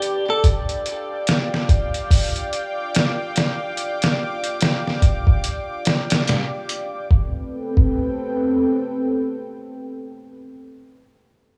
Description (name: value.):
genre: trip hop.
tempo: 72 BPM.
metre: 4/4.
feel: swing 60% on 16ths.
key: A minor.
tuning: A4 = 441 Hz.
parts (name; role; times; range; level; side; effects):
dark analog pad; sustained chords; 0.0-10.4 s; C4 to D6; -27 LUFS; equal; chorus, vintage 12-bit sampler grit.
trip hop sampler-style drum kit; drums; 0.0-8.0 s; hi-hat, kick drum, snare drum; -20 LUFS; equal; none.
room: light reverb.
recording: none.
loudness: -21 LUFS.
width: mono.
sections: 0.0-7.1 A section; 7.1-10.4 B section.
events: none.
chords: 0.4 G5; 7.1 Am9.